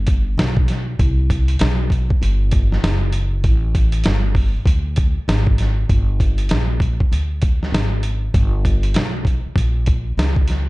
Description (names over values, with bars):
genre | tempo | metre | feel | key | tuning
hip hop, jazz-hop | 98 BPM | 4/4 | swing 64% on 16ths | unclear | A4 = 440 Hz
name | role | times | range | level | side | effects
upright bass | bass | 0.0-10.7 s | F#1 to D2 | -18 LUFS | equal | none
dusty soul sampler-style drum kit | drums | 0.1-10.7 s | hi-hat, kick drum, snare drum | -18 LUFS | equal | none
room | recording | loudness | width
little or no reverb | dark, warm production, nothing above 10.5 kHz | -15 LUFS | side -21 dB against mid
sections
0.0-5.9 A section; 5.9-10.7 B section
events
none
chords
none